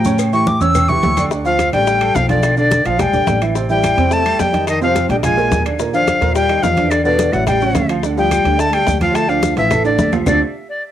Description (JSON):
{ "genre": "Afro-Cuban jazz", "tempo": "214 BPM", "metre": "4/4", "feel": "straight", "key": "D minor", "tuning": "A4 = 442 Hz", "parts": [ { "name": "breathy bright jazz flute", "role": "melody", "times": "0.0-10.4 s", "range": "D5 to E6", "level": "-17 LUFS", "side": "equal", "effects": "cassette tape, analog delay" }, { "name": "upright bass", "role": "bass", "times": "0.0-10.4 s", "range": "A1 to A2", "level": "-20 LUFS", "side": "equal", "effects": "none" }, { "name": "maracas", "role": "percussion", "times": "0.0-10.3 s", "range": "none", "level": "-34 LUFS", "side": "left 9 dB", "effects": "none" }, { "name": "warm upright piano", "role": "accompaniment", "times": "0.1-10.4 s", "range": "Bb2 to A5", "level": "-20 LUFS", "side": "right 6 dB", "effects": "cassette tape" }, { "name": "congas", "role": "percussion", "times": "0.1-10.3 s", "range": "none", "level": "-23 LUFS", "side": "left 1 dB", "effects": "none" }, { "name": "agogo bells and timbales", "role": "percussion", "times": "0.2-10.3 s", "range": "none", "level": "-28 LUFS", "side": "right 8 dB", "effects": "none" }, { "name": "claves", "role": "percussion", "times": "0.2-10.3 s", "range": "none", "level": "-32 LUFS", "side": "left 7 dB", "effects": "none" }, { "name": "cowbell and bongos", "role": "percussion", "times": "0.2-10.3 s", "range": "none", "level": "-25 LUFS", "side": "left 7 dB", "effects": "none" }, { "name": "breathy trombone", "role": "second line", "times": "1.5-10.4 s", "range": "D3 to D4", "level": "-20 LUFS", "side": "left 6 dB", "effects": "cassette tape" } ], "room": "moderate studio reverb, RT60 0.6 s", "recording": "home recording on cassette", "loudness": "-13 LUFS", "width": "side -11 dB against mid", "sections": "0.0-1.3 A section; 1.3-10.3 B section", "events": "flute solo 0.0-1.3; drum fill 9.8-10.3", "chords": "0.2 A7; 1.3 Dm; 2.4 Bdim; 3.0 Bb6; 3.6 Am7; 4.7 F5; 5.2 Bb7; 5.8 Ebmaj9; 6.9 E5; 7.5 A7; 8.0 Dm; 10.3 Dm7" }